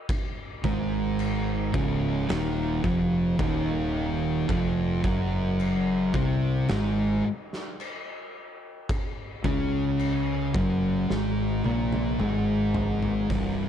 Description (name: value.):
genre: stoner and doom metal.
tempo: 55 BPM.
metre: 4/4.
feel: straight.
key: unclear.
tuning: A4 = 440 Hz.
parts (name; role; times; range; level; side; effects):
oversized low-tuned drum kit; drums; 0.1-13.6 s; crash cymbal, hi-hat, kick drum, snare drum, toms; -32 LUFS; equal; vintage 12-bit sampler grit.
fuzz guitar; riff; 0.6-13.7 s; C2 to Db4; -28 LUFS; right 9 dB; distortion.
thick fuzz guitar; riff; 0.6-13.7 s; C2 to Db4; -28 LUFS; left 7 dB; distortion.
fuzz fingered electric bass; bass; 0.6-13.7 s; C1 to Db2; -30 LUFS; equal; overdrive.
room: studio reverb.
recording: none.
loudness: -24 LUFS.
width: side -9 dB against mid.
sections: 0.0-13.3 A section.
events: drum fill 11.1-13.3.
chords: 0.0 N.C.; 4.5 F5.